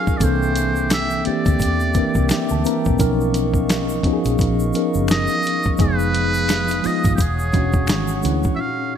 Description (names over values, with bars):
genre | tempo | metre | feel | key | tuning
R&B, neo-soul | 86 BPM | 4/4 | swing 57% on 16ths | unclear | A4 = 440 Hz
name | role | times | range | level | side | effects
trumpet with metal mute | melody | 0.0-8.9 s | G4 to F5 | -24 LUFS | right 2 dB | none
mellow tine electric piano | accompaniment | 0.0-9.0 s | Bb2 to Bb5 | -21 LUFS | left 1 dB | medium stereo tremolo
glass harmonica | sustained chords | 0.0-8.6 s | Ab4 to Eb6 | -30 LUFS | left 1 dB | none
dusty soul sampler-style drum kit | drums | 0.1-8.6 s | hi-hat, kick drum, snare drum | -21 LUFS | equal | none
egg shaker and finger snaps | percussion | 0.1-8.6 s | none | -34 LUFS | left 4 dB | none
vintage muted fingered electric bass | bass | 0.2-8.4 s | E1 to E2 | -22 LUFS | equal | none
room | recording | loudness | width
light reverb, small room ambience | bright 1980s-style digital production | -16 LUFS | side -8 dB against mid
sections
0.0-8.6 A section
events
tine electric piano fill 1.9-3.0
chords
0.2 C13; 3.0 Bmaj9#11; 5.8 Fm7b5; 7.2 E13